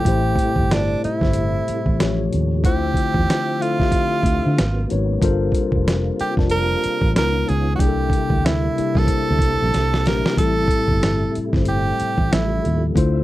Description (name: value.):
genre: R&B, neo-soul.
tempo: 93 BPM.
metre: 4/4.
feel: swing 60% on 16ths.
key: unclear.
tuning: A4 = 440 Hz.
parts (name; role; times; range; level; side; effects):
edgy tenor saxophone; melody; 0.0-12.8 s; D4 to Bb4; -23 LUFS; right 3 dB; slapback echo.
mellow tine electric piano; accompaniment; 0.0-13.2 s; A2 to A5; -23 LUFS; left 5 dB; none.
tonewheel organ; sustained chords; 0.0-13.2 s; C3 to E5; -30 LUFS; right 2 dB; slow rotary speaker, chorus vibrato.
vintage muted fingered electric bass; bass; 0.1-13.2 s; F1 to D3; -21 LUFS; right 1 dB; none.
dusty soul sampler-style drum kit; drums; 0.1-13.1 s; hi-hat, kick drum, snare drum; -21 LUFS; equal; none.
room: little or no reverb.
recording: dry, close 1970s-style studio recording.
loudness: -17 LUFS.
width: side -16 dB against mid.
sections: 0.1-13.2 A section.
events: drum fill 9.7-10.4.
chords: 0.1 Am7; 2.0 A7b13; 2.6 Dm9; 4.6 G#m11; 5.2 Gm11; 7.2 C#9; 7.8 C13; 10.4 Am7; 12.3 A7b13.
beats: | 0.06 0.70 1.35 1.99 | 2.64 3.28 3.93 4.57 | 5.22 5.86 6.51 7.15 | 7.80 8.44 9.09 9.73 | 10.38 11.02 11.67 12.31 | 12.96.